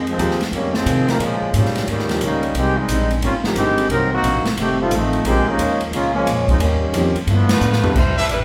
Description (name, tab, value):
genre	jazz, big band swing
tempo	178 BPM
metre	4/4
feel	swing 64% on 8ths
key	Ab major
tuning	A4 = 440 Hz
part	picked steel-string acoustic guitar	accompaniment	0.0-7.9 s	F2 to G4	-29 LUFS	equal	none
part	upright bass	bass	0.0-8.4 s	F1 to C3	-24 LUFS	equal	none
part	brilliant trombone section	second line	0.1-7.8 s	Bb2 to Bb4	-22 LUFS	equal	none
part	swinging big-band drum kit	drums	0.1-8.4 s	crash cymbal, hi-hat, kick drum, ride cymbal, snare drum, toms	-26 LUFS	equal	none
part	clear baby grand piano	accompaniment	0.2-8.0 s	C3 to B4	-27 LUFS	equal	none
part	clear saxophone section	melody	7.5-8.4 s	G3 to C5	-24 LUFS	equal	none
part	brilliant trumpet section	stabs	8.2-8.3 s	D4 to E5	-23 LUFS	equal	none
room	wet large studio reverb, RT60 0.9 s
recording	band playing live in one room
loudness	-18 LUFS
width	mono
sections	0.0-8.0 A section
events	trombone section solo 0.0-8.0; band accent 7.5; drum fill 7.6-8.0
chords	0.0 Fm7; 1.2 Bbm7; 1.9 Eb7; 2.6 Abmaj7; 3.9 Cm7b5; 4.6 F7; 5.3 Bbm7; 6.6 Eb7; 7.3 G13